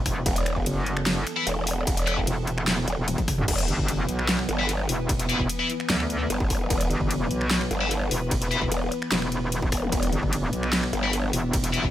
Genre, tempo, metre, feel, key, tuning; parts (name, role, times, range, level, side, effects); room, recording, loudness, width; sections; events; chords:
heavy wobble dubstep; 149 BPM; 4/4; half-time; E minor; A4 = 439 Hz
evolving wavetable pad; sustained chords; 0.0-11.9 s; E3 to B4; -31 LUFS; equal; chorus, built-in reverb, sidechain pumping
metallic wobble bass; bass; 0.0-11.9 s; E1 to D2; -26 LUFS; equal; chorus, overdrive
dubstep drum kit; drums; 0.1-11.8 s; crash cymbal, finger snaps, handclaps, hi-hat, ride cymbal, snare drum, toms; -29 LUFS; equal; studio reverb
electronic kick drum; drums; 0.1-11.9 s; -28 LUFS; equal; distortion, studio reverb
growl bass; bass; 0.3-11.3 s; E1 to G1; -27 LUFS; equal; chorus, overdrive
heavy high-gain guitar; stabs; 1.4-2.1, 4.6-8.6, 11.0-11.8 s; E4 to E5; -29 LUFS; left 4 dB; distortion, digital delay
zap; sound effects; 9.8-9.9 s; -35 LUFS; left 1 dB
light reverb, digital ambience; -22 LUFS; side -12 dB against mid
0.0-3.5 A section; 3.5-11.9 A section
drop 0.0-3.5, 3.5-11.9; drum fill 3.1-3.5
0.0 E5; 3.5 Em